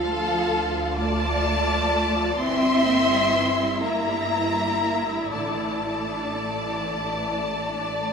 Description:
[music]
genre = classical, slow romantic movement for string orchestra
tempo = 38-45 BPM (dotted quarters)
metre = 12/8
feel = rubato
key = D minor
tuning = A4 = 440 Hz
[part]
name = warm symphonic violin section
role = melody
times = 0.0-8.1 s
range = F5 to C6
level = -27 LUFS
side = left 2 dB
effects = none
[part]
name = dark symphonic violin section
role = second line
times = 0.0-8.1 s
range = A4 to E5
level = -26 LUFS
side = left 2 dB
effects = none
[part]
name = warm symphonic viola section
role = accompaniment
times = 0.0-8.1 s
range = D3 to F4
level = -28 LUFS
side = right 1 dB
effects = none
[part]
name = rich symphonic cello section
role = bass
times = 0.0-8.1 s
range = F3 to C4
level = -29 LUFS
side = right 1 dB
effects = none
[part]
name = warm symphonic double bass section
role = bass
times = 0.0-8.1 s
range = G1 to D2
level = -32 LUFS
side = right 2 dB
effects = none
[sound]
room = wet scoring stage reverb, RT60 1.6 s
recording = minimal, uncompressed stereo recording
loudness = -21 LUFS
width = side -6 dB against mid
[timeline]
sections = 0.0-8.1 A section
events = none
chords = 0.0 Dm; 2.4 Edim/G; 5.3 Asus4

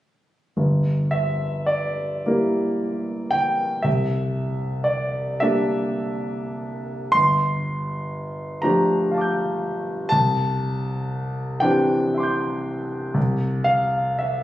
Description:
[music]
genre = classical, impressionist solo piano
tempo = 33-42 BPM (dotted quarters)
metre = 6/8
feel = rubato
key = G dorian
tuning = A4 = 440 Hz
[part]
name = clear concert grand piano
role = solo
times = 0.6-14.4 s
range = G1 to G6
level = -20 LUFS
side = equal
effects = none
[sound]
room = wet recital hall reverb, RT60 1.5 s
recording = recorded on a phone in the room, studio reverb, compression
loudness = -20 LUFS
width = side -14 dB against mid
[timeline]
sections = 0.6-14.4 A section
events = none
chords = 0.6 Gm6; 3.9 C13; 7.2 Gm9; 10.1 C69; 13.2 C

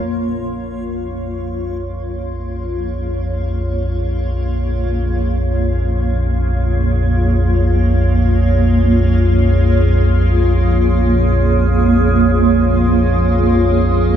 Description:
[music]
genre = dark ambient drone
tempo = free time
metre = none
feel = none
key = Bb minor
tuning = A4 = 442 Hz
[part]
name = granular cloud pad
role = sustained chords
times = 0.0-14.2 s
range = Bb3 to Db5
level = -18 LUFS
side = right 1 dB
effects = built-in reverb
[part]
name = deep rumbling drone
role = drone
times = 0.0-14.2 s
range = Bb1 to F2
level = -15 LUFS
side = equal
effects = built-in reverb
[sound]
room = wet cathedral reverb, RT60 5.2 s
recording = none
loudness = -13 LUFS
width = side -9 dB against mid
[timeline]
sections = 0.0-14.2 A section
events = fade-in on ambient pad 0.0-14.2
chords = 0.0 Bbm7

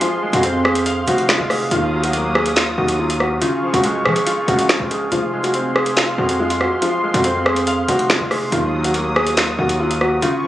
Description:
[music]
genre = hip hop, drill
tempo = 141 BPM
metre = 4/4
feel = half-time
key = F phrygian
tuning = A4 = 440 Hz
[part]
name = dark grand piano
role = melody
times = 0.0-10.5 s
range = F4 to Ab4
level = -20 LUFS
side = equal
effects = none
[part]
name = felt-muted upright piano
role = accompaniment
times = 0.0-10.5 s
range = Db3 to F5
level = -23 LUFS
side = left 1 dB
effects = none
[part]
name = warm analog pad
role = sustained chords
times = 0.0-10.5 s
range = Gb3 to Eb6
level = -24 LUFS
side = right 1 dB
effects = chorus
[part]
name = drill drum kit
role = drums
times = 0.0-10.3 s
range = finger snaps, hi-hat, rim click, snare drum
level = -20 LUFS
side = equal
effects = vintage 12-bit sampler grit
[part]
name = distorted 808-style bass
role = bass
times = 0.3-10.2 s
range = F1 to F3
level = -24 LUFS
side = right 1 dB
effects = distortion
[sound]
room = light reverb, small room ambience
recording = recorded on a phone in the room, studio reverb, compression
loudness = -15 LUFS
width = side -14 dB against mid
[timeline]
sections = 0.0-10.5 A section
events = none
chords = 0.0 Fm; 1.7 Ebmadd9; 3.4 Db; 5.1 Fm; 8.5 Ebmadd9

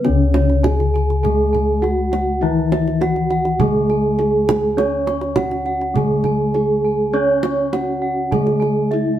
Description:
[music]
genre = Javanese gamelan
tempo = 102 BPM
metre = 4/4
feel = straight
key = unclear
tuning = A4 = 445 Hz
[part]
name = gamelan-type bronze metallophone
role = melody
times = 0.0-9.2 s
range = C#4 to C#5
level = -20 LUFS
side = right 2 dB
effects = none
[part]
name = gamelan-type bronze metallophone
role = accompaniment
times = 0.0-9.2 s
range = C#3 to C#4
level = -22 LUFS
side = left 3 dB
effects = none
[part]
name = gamelan-type bronze metallophone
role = arpeggios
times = 0.0-9.2 s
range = C#5 to C#6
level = -25 LUFS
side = right 1 dB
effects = none
[part]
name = gamelan-type bossed gongs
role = bass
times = 0.0-9.2 s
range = C#2 to C#5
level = -21 LUFS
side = left 2 dB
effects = none
[part]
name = kendang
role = percussion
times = 0.0-9.0 s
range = none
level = -24 LUFS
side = right 4 dB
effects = none
[sound]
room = wet stone room reverb, RT60 1.0 s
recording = band playing live in one room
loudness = -15 LUFS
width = side -11 dB against mid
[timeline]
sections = 0.0-9.2 A section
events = none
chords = none

